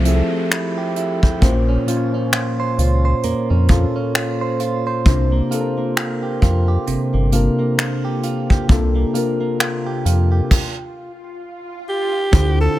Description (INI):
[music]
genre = contemporary R&B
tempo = 66 BPM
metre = 4/4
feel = swing 58% on 16ths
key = unclear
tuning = A4 = 440 Hz
[part]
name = muted felt-like synth keys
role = accompaniment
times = 0.0-12.8 s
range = Bb2 to Db5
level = -21 LUFS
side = left 3 dB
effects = chorus
[part]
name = direct-recorded clean electric guitar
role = arpeggios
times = 0.0-12.8 s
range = C3 to C5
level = -24 LUFS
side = right 6 dB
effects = spring reverb, digital delay
[part]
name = round analog bass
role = bass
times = 0.0-12.7 s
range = G1 to F2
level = -16 LUFS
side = equal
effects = none
[part]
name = soft brush drum kit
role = drums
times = 0.0-12.6 s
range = crash cymbal, finger snaps, hi-hat, kick drum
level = -17 LUFS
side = equal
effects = none
[part]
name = downlifter and swell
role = sound effects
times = 0.0-12.3 s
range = none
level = -35 LUFS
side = equal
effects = none
[part]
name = raspy alto saxophone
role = melody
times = 11.9-12.8 s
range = G4 to A4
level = -19 LUFS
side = right 1 dB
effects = none
[part]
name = deep dark ambient pad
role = sustained chords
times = 12.8 s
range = none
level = barely audible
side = none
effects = none
[sound]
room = small room ambience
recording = none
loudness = -16 LUFS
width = side -15 dB against mid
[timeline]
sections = 0.0-12.3 A section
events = stop 10.5-12.3; swell 10.7-12.3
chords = 0.0 Fmaj9; 1.4 Bbmadd9; 5.1 C7sus4